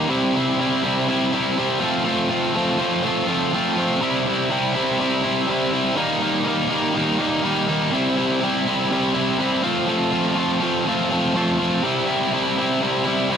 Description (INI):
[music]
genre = rock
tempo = 123 BPM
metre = 4/4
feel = straight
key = unclear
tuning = A4 = 440 Hz
[part]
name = distorted electric guitar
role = solo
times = 0.0-13.4 s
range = C3 to F4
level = -18 LUFS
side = equal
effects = overdrive
[sound]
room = little or no reverb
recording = dry, close 1970s-style studio recording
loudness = -18 LUFS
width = side -7 dB against mid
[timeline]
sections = 0.0-4.0 A section; 4.0-13.4 A section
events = none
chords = 0.1 C; 1.8 F; 4.0 C; 6.0 Eb; 7.9 C; 9.6 F; 11.8 C